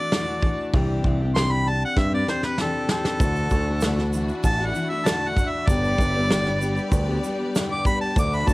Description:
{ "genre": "folk rock and heartland rock", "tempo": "97 BPM", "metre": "4/4", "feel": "straight", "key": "unclear", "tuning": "A4 = 440 Hz", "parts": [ { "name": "clear harmonica", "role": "melody", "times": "0.0-8.5 s", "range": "A4 to D6", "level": "-26 LUFS", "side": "equal", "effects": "cassette tape, tape echo" }, { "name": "picked steel-string acoustic guitar", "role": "accompaniment", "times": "0.0-8.5 s", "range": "G2 to G4", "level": "-28 LUFS", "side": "left 3 dB", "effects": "cassette tape" }, { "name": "soft brush drum kit", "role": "drums", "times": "0.1-8.5 s", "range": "hi-hat, kick drum, snare drum", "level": "-24 LUFS", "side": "equal", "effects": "cassette tape" }, { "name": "picked electric bass", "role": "bass", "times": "0.7-8.5 s", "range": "G1 to G2", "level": "-24 LUFS", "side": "equal", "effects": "none" }, { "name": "rich symphonic string section", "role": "sustained chords", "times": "3.2-8.5 s", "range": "G3 to D5", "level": "-33 LUFS", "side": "equal", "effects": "cassette tape" }, { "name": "egg shaker", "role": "percussion", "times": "3.2-8.5 s", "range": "none", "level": "-41 LUFS", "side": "right 7 dB", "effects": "none" } ], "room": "little or no reverb", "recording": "home recording on cassette", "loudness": "-20 LUFS", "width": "side -21 dB against mid", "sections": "0.0-8.5 A section", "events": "harmonica solo 0.0-8.5; drum fill 2.0-3.2", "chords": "0.0 Dadd9; 0.7 Cadd9; 3.2 Dadd9; 5.7 G", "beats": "0.11 | 0.73 1.35 1.97 2.59 | 3.21 3.83 4.45 5.07 | 5.69 6.31 6.93 7.55 | 8.17" }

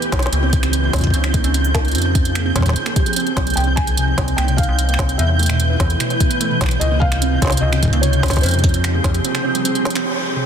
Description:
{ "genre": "IDM", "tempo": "148 BPM", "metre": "4/4", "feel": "straight", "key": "unclear", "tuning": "A4 = 440 Hz", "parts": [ { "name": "glassy FM pad", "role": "sustained chords", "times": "0.0-10.5 s", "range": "C3 to B4", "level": "-25 LUFS", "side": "equal", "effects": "ensemble chorus, built-in reverb" }, { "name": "organic electronic drum kit", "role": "drums", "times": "0.0-10.4 s", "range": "finger snaps, hi-hat, snare drum", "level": "-23 LUFS", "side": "right 1 dB", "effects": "low-pass filter on snare, small room ambience, low-pass filter on hats, digital delay" }, { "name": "flickering grainy texture", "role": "texture", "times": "0.0-10.5 s", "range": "G6", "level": "-25 LUFS", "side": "right 2 dB", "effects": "built-in reverb, sidechain pumping" }, { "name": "harp-like synth pluck", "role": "arpeggios", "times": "0.1-10.4 s", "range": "B2 to G4", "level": "-24 LUFS", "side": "right 4 dB", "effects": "chorus, phaser, ping-pong delay" }, { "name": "metallic FM bass", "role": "bass", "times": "0.1-9.2 s", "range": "B1 to F2", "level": "-18 LUFS", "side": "left 1 dB", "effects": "none" }, { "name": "electronic kick drum", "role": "drums", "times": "0.1-9.1 s", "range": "none", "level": "-19 LUFS", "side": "left 1 dB", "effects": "small room ambience" }, { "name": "felt-muted upright piano", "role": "melody", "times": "3.6-9.8 s", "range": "C5 to Ab5", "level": "-26 LUFS", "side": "left 1 dB", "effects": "digital delay" } ], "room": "light reverb", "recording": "dense, heavily limited modern master", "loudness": "-15 LUFS", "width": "side -8 dB against mid", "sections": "0.0-10.1 A section", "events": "break 9.2-10.1; drum fill 9.9; band accent 9.9", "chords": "0.3 Dbadd9; 1.9 Fmadd9; 3.6 Cm; 5.2 Em; 6.8 Dbadd9; 8.4 Fmadd9", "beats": "| 0.33 0.73 1.14 1.54 | 1.95 2.35 2.76 3.16 | 3.57 3.98 4.38 4.79 | 5.19 5.60 6.00 6.41 | 6.81 7.22 7.62 8.03 | 8.44 8.84 9.25 9.65 | 10.06" }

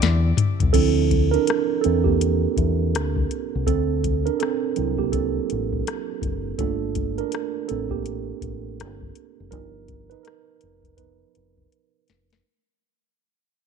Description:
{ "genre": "R&B, neo-soul", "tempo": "82 BPM", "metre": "4/4", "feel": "swing 62% on 16ths", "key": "D minor", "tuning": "A4 = 441 Hz", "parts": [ { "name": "mellow tine electric piano", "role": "accompaniment", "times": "0.0-12.5 s", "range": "D3 to B4", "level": "-24 LUFS", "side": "right 12 dB", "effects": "medium stereo tremolo" }, { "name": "warm studio string section", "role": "sustained chords", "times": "0.0-0.7 s", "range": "D4 to D6", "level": "-37 LUFS", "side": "left 6 dB", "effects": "none" }, { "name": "deep dub fingered electric bass", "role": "bass", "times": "0.0-12.4 s", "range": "F1 to E2", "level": "-24 LUFS", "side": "left 2 dB", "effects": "none" }, { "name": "soft vintage rhythm box", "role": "drums", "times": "0.0-12.4 s", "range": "crash cymbal, hi-hat, kick drum, rim click, snare drum, toms", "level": "-26 LUFS", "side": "left 4 dB", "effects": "none" } ], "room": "light reverb", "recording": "1960s-style stereo with parts hard left and right", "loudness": "-20 LUFS", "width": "side -6 dB against mid", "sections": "0.7-12.4 A section", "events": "drum fill 0.0-0.7, 11.7-12.4; fade-out 0.7-12.4; tine electric piano solo 0.7-12.4", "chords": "0.0 Dm9; 3.7 D7; 6.6 Gm9; 9.5 G7alt", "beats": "0.00 | 0.73 1.46 2.19 2.92 | 3.66 4.39 5.12 5.85 | 6.58 7.32 8.05 8.78 | 9.51 10.24 10.97 11.71" }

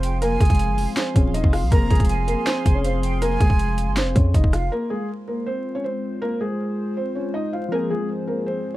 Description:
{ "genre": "hip hop, trap", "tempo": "160 BPM", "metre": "4/4", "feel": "half-time", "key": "F minor", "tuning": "A4 = 440 Hz", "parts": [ { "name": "felt-muted upright piano", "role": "melody", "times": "0.0-8.8 s", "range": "Ab3 to F5", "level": "-25 LUFS", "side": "left 1 dB", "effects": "none" }, { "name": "breathy hollow jazz flute", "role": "second line", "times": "0.0-4.7 s", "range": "F5 to Bb5", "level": "-29 LUFS", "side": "right 5 dB", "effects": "tape echo" }, { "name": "soft electric-piano-like synth keys", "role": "accompaniment", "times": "0.0-4.7, 7.7-8.8 s", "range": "F3 to Ab4", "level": "-30 LUFS", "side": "equal", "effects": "chorus, phaser" }, { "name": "dark analog pad", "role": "sustained chords", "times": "0.0-8.8 s", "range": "Ab3 to C6", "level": "-32 LUFS", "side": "equal", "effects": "chorus, phaser" }, { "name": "hard-hitting 808-style bass", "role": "bass", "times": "0.0-4.7 s", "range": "Eb1 to F2", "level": "-22 LUFS", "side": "equal", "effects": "none" }, { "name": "trap drum kit", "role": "drums", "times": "0.0-4.6 s", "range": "hi-hat, kick drum, rim click, snare drum", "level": "-19 LUFS", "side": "equal", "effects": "none" } ], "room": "light reverb", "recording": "dark, warm production, vinyl crackle", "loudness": "-19 LUFS", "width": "side -16 dB against mid", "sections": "0.0-4.7 A section; 4.7-8.8 B section", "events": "none", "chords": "0.0 Fm", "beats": "| 0.22 0.59 0.97 1.34 | 1.72 2.09 2.47 2.84 | 3.22 3.59 3.97 4.34 | 4.72 5.09 5.47 5.84 | 6.22 6.59 6.97 7.34 | 7.72 8.09 8.47" }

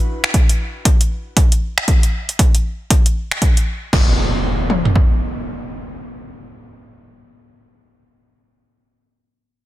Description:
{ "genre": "deep house", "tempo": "117 BPM", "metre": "4/4", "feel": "swing 60% on 16ths", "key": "none", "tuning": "none", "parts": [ { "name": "deep house drum kit", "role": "drums", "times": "0.2-4.1 s", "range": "crash cymbal, finger snaps, hi-hat", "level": "-20 LUFS", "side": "equal", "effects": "soft clipping on snare" }, { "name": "punchy analog drum machine", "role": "drums", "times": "0.3-5.1 s", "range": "kick drum, toms", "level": "-14 LUFS", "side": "equal", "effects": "none" }, { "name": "impact", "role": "sound effects", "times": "3.9-8.1 s", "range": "none", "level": "-22 LUFS", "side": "equal", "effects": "none" } ], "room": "digital ambience", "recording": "dense, heavily limited modern master", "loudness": "-14 LUFS", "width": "side -15 dB against mid", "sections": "0.0-3.9 A section; 3.9-8.0 B section", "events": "none", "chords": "none", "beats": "0.34 0.85 1.37 | 1.88 2.39 2.90 3.42 | 3.93 4.44 4.96 5.47 | 5.98 6.49 7.01 7.52" }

